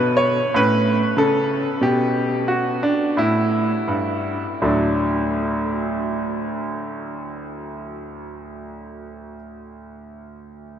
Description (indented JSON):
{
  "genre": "classical, baroque-style suite movement for grand piano",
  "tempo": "40-51 BPM",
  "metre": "3/4",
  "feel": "rubato",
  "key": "D major",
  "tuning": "A4 = 440 Hz",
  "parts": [
    { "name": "bright concert grand piano", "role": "solo", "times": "0.0-10.8 s", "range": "D2 to C#5", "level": "-20 LUFS", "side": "equal", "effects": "none" }
  ],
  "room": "wet huge ambient reverb, RT60 7.4 s",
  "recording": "in a vast, echoing space",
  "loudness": "-18 LUFS",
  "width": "side -9 dB against mid",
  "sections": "0.0-4.6 A section; 4.6-9.1 B section",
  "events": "slowing down 0.0-4.6",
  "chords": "0.0 N.C.; 0.6 A7; 4.6 D",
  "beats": "| 0.56 1.82 3.17 | 4.64 6.12 7.60"
}